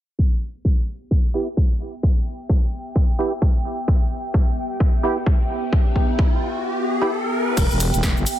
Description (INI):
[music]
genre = bass house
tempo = 130 BPM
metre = 4/4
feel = swing 59% on 16ths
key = E minor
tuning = A4 = 439 Hz
[part]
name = electronic kick drum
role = drums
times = 0.2-8.1 s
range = none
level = -18 LUFS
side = equal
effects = overdrive, studio reverb
[part]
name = warbly tape-like pad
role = texture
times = 1.9-8.4 s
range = B3 to G5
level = -28 LUFS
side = equal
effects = chorus, built-in reverb, phaser, sidechain pumping
[part]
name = percussive organ stab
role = stabs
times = 1.3-7.1 s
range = B3 to G4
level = -24 LUFS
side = right 3 dB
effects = ensemble chorus, sidechain pumping, digital delay
[part]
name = riser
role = sound effects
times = 5.4-7.6 s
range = none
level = -27 LUFS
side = left 2 dB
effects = none
[part]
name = growling FM bass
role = bass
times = 7.6-8.2 s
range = E1 to G1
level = -21 LUFS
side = equal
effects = tube saturation, sidechain pumping
[part]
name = big-room dance drum kit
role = drums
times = 7.6-8.4 s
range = cabasa, crash cymbal, hi-hat, snare drum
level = -25 LUFS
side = left 1 dB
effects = studio reverb
[sound]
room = little or no reverb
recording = low-pass filter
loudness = -18 LUFS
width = side -12 dB against mid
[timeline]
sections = 0.2-7.6 A section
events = fade-in on ambient pad 0.2-7.6; filter sweep on synth stab 0.2-7.6; filter sweep 0.2-7.6; riser 5.4-7.6; break 6.6-7.6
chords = 0.2 Em